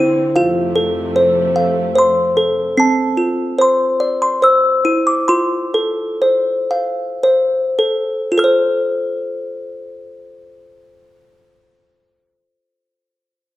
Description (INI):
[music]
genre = children's music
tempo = 48-76 BPM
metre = 3/4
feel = straight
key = F major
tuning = A4 = 440 Hz
[part]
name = music box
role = melody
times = 0.0-12.8 s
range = C4 to F6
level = -14 LUFS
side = equal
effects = none
[part]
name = dark studio string section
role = sustained chords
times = 0.0-2.7 s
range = F2 to C4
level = -23 LUFS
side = right 2 dB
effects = none
[sound]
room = moderate recital hall reverb, RT60 1.7 s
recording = none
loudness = -13 LUFS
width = side -15 dB against mid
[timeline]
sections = 0.0-2.8 A section; 2.8-8.4 B section; 8.4-12.0 C section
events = slowing down 2.8-8.4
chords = 0.4 F; 2.8 F/C; 3.6 Cadd9; 5.3 F